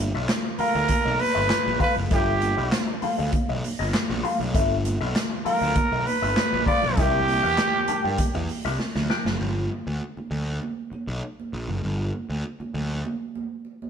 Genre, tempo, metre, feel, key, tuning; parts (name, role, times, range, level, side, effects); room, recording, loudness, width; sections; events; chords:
funk; 99 BPM; 4/4; straight; G mixolydian; A4 = 441 Hz
mellow electric guitar; accompaniment; 0.0-9.3 s; B3 to G5; -29 LUFS; left 4 dB; wah
fuzz picked electric bass; bass; 0.0-13.0 s; F#1 to G2; -28 LUFS; equal; overdrive
swinging big-band drum kit; drums; 0.3-9.4 s; handclaps, hi-hat, kick drum, snare drum; -26 LUFS; equal
congas; percussion; 0.5-13.9 s; -34 LUFS; right 4 dB
growling trumpet; melody; 0.6-8.8 s; G4 to D5; -24 LUFS; right 2 dB
moderate stone room reverb, RT60 1.3 s; band playing live in one room; -22 LUFS; side -7 dB against mid
0.0-9.4 A section; 9.4-13.9 B section
drum fill 8.8-9.4
0.0 G13; 7.0 C9; 9.4 G5